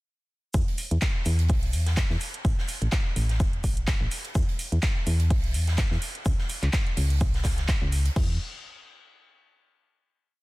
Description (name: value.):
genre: piano house.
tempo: 126 BPM.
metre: 4/4.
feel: swing 55% on 16ths.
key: unclear.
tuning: A4 = 440 Hz.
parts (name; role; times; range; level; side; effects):
solid FM bass; bass; 0.5-8.4 s; E1 to E2; -24 LUFS; equal; tube saturation, sidechain pumping.
electronic kick drum; drums; 0.5-8.3 s; none; -25 LUFS; equal; studio reverb.
house drum kit; drums; 0.5-8.3 s; crash cymbal, handclaps, hi-hat; -34 LUFS; right 1 dB; studio reverb.
oversized low-tuned drum kit; drums; 0.5-8.2 s; hi-hat, shaker, snare drum; -38 LUFS; right 1 dB; sidechain pumping on hats, high-pass filter on hats, studio reverb, high-pass filter on snare, sidechain pumping on perc, high-pass filter on perc, high-pass filter on room.
room: studio reverb.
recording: dense, heavily limited modern master.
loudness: -23 LUFS.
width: side -21 dB against mid.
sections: 0.5-8.2 groove; 8.2-10.1 final note.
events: none.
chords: none.